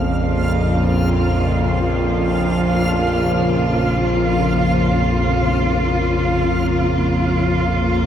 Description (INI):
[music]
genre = dark ambient drone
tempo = free time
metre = none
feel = none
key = Bb minor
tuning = A4 = 440 Hz
[part]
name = warm studio cello section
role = sustained chords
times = 0.0-8.1 s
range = Db3 to F4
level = -20 LUFS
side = equal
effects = none
[part]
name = analog drone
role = drone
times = 0.0-8.1 s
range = Bb1 to F2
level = -18 LUFS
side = equal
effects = chorus
[part]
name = backwards swelling texture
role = texture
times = 0.0-8.1 s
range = F5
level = -26 LUFS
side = right 2 dB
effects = built-in reverb
[sound]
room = wet huge ambient reverb, RT60 8.9 s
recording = none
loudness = -15 LUFS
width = side -9 dB against mid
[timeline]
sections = 0.0-8.1 A section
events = none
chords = 0.0 Bbm